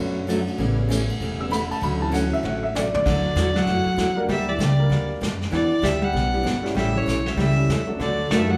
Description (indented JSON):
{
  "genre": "country, western swing",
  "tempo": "194 BPM",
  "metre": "4/4",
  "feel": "swing 61% on 8ths",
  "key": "D major",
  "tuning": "A4 = 439 Hz",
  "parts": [
    { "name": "picked steel-string acoustic guitar", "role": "accompaniment", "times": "0.0-8.4 s", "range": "B2 to G4", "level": "-30 LUFS", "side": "equal", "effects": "none" },
    { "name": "warm upright piano", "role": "accompaniment", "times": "0.0-8.6 s", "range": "C#3 to E6", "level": "-30 LUFS", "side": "equal", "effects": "none" },
    { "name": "upright bass", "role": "bass", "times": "0.0-8.6 s", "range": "E1 to F#2", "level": "-28 LUFS", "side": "equal", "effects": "none" },
    { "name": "vintage brush drum kit", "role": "drums", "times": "0.3-8.6 s", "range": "brushed snare drum, crash cymbal, hi-hat, kick drum, ride cymbal, snare drum, toms", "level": "-34 LUFS", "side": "equal", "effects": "none" },
    { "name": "clear fiddle", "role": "melody", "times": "3.1-8.6 s", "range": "C#5 to F#5", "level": "-29 LUFS", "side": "equal", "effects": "none" },
    { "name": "archtop guitar, miked and amplified", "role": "second line", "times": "3.1-8.6 s", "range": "D3 to A3", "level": "-27 LUFS", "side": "equal", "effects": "none" }
  ],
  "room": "wet large studio reverb, RT60 0.9 s",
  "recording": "band playing live in one room",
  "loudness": "-22 LUFS",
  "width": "mono",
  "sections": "0.0-3.1 A section; 3.1-8.6 B section",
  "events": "upright piano solo 0.0-3.1; drum fill 2.4-3.1",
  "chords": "0.0 Bm7; 0.6 A7; 1.8 Dmaj7; 3.1 Dadd9; 4.3 Gm; 5.5 Em7; 6.8 A7; 8.0 D",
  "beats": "0.28 | 0.59 0.90 1.21 1.51 | 1.82 2.13 2.44 2.75 | 3.06 3.36 3.67 3.98 | 4.29 4.60 4.91 5.22 | 5.53 5.84 6.14 6.46 | 6.76 7.07 7.38 7.69 | 8.00 8.31"
}